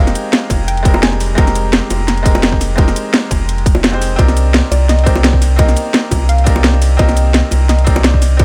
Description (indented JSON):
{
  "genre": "liquid drum and bass",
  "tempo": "171 BPM",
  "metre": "4/4",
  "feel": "swing 53% on 16ths",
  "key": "F dorian",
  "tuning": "A4 = 440 Hz",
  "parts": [
    { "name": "soft round pluck", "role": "melody", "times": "0.0-2.0, 4.7-8.4 s", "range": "C5 to Bb5", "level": "-25 LUFS", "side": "equal", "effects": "chorus, delay" },
    { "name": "bright concert grand piano", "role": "accompaniment", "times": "0.0-8.4 s", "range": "G3 to C5", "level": "-22 LUFS", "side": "equal", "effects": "vintage 12-bit sampler grit, dub echo" },
    { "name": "warm sub bass", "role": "bass", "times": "0.0-8.4 s", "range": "F1 to C2", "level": "-16 LUFS", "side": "equal", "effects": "none" },
    { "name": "drum and bass drum kit", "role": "drums", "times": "0.1-8.4 s", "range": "cabasa, hi-hat, ride cymbal, snare drum", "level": "-19 LUFS", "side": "equal", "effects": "overdrive" },
    { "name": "electronic kick drum", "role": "drums", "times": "0.5-8.4 s", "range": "none", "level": "-15 LUFS", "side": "equal", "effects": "overdrive" },
    { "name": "bongos", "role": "percussion", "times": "0.5-8.4 s", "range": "none", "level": "-25 LUFS", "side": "equal", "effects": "none" }
  ],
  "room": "little or no reverb",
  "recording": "none",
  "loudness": "-13 LUFS",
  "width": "mono",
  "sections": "0.0-8.4 A section",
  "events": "none",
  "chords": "0.0 Fm11; 4.2 Cm9"
}